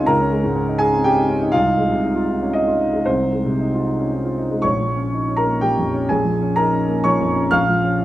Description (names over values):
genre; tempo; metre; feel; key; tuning
neoclassical minimalist piano; 111-128 BPM; 3/4; rubato; Bb dorian; A4 = 442 Hz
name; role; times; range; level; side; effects
warm concert grand piano; solo; 0.0-8.0 s; Bb1 to F6; -16 LUFS; equal; none
room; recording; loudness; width
light reverb, small room reverb; rough home demo mix; -16 LUFS; side -14 dB against mid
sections
0.0-4.6 A section; 4.6-8.0 B section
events
none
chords
0.0 Dbadd9; 1.5 Ab/C; 4.6 Bbm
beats
| 0.07 0.56 1.05 | 1.54 2.02 2.53 | 3.06 3.59 4.11 | 4.63 5.12 5.61 | 6.09 6.57 7.05 | 7.52 8.00